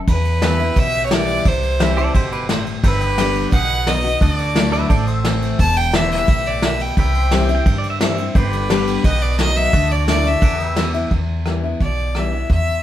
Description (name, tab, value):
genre	honky-tonk and classic country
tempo	174 BPM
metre	4/4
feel	straight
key	E minor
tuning	A4 = 440 Hz
part	picked steel-string acoustic guitar	accompaniment	0.0-12.8 s	E2 to G4	-22 LUFS	left 4 dB	none
part	pedal steel guitar	sustained chords	0.0-11.1 s	F#4 to E5	-28 LUFS	equal	none
part	clear fiddle	melody	0.1-12.8 s	B4 to A5	-21 LUFS	equal	none
part	upright bass	bass	0.1-12.8 s	E1 to G2	-21 LUFS	equal	none
part	vintage brush drum kit	drums	0.1-12.6 s	hi-hat, kick drum, ride cymbal, rim click, snare drum	-20 LUFS	equal	none
part	pedal steel guitar	second line	2.0-5.2, 7.5-8.3 s	G4 to G5	-25 LUFS	right 3 dB	none
room	moderate studio reverb, RT60 0.6 s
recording	band playing live in one room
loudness	-15 LUFS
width	side -12 dB against mid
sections	0.1-11.1 A section; 11.1-12.8 B section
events	none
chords	0.1 Em; 1.5 C; 2.8 G; 3.5 B; 4.2 Dadd9; 4.9 Am; 5.6 Em; 7.0 C; 8.4 G; 9.0 B; 9.7 Dadd9; 10.4 Em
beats	| 0.08 0.43 0.77 1.12 | 1.46 1.81 2.15 2.50 | 2.84 3.19 3.53 3.88 | 4.22 4.56 4.91 5.25 | 5.60 5.94 6.29 6.63 | 6.98 7.32 7.67 8.01 | 8.36 8.70 9.04 9.39 | 9.73 10.08 10.43 10.77 | 11.12 11.46 11.81 12.15 | 12.50